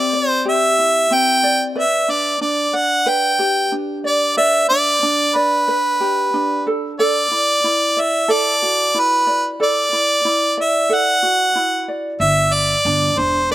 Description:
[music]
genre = acoustic pop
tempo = 92 BPM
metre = 4/4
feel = swing 55% on 16ths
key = G major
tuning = A4 = 439 Hz
[part]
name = bright harmonica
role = melody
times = 0.0-13.5 s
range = B4 to G5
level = -15 LUFS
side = right 1 dB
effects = slapback echo
[part]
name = ukulele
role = accompaniment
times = 0.0-13.5 s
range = C4 to D5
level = -22 LUFS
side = equal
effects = slapback echo
[part]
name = upright bass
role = bass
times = 12.2-13.5 s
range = E1 to G1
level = -22 LUFS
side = equal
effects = none
[sound]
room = little or no reverb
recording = recorded outdoors, with no room sound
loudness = -14 LUFS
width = side -14 dB against mid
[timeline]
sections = 0.0-12.2 A section; 12.2-13.5 B section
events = none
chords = 0.0 Cadd9; 1.8 G; 6.7 Dadd9; 12.2 G5

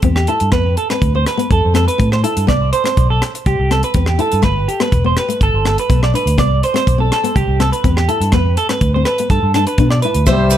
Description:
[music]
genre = highlife guitar band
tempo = 123 BPM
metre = 4/4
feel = straight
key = C major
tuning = A4 = 440 Hz
[part]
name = nylon-string guitar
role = accompaniment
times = 0.0-10.5 s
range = A3 to E4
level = -22 LUFS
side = left 7 dB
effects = none
[part]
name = fingered electric bass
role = bass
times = 0.0-10.6 s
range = E1 to B2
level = -16 LUFS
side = equal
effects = none
[part]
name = tight funk drum kit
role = drums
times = 0.0-10.6 s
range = hi-hat, kick drum, rim click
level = -18 LUFS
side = equal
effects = none
[part]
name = clean electric guitar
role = arpeggios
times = 0.2-10.6 s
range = G4 to D5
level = -18 LUFS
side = right 3 dB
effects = lush chorus, tape echo
[part]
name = fingerpicked steel-string acoustic guitar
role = melody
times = 10.3-10.6 s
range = C5 to E5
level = -16 LUFS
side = left 1 dB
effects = none
[part]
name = clear trombone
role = second line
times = 10.3-10.6 s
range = G3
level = -16 LUFS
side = left 1 dB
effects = none
[part]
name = maracas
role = percussion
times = 10.3-10.6 s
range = none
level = -23 LUFS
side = right 7 dB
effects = none
[sound]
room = light reverb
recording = none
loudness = -12 LUFS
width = side -11 dB against mid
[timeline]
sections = 0.0-10.3 A section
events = none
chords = 0.0 C; 0.5 F; 2.5 Cmaj7; 4.4 G; 6.4 Cmaj7; 8.3 F; 9.3 G

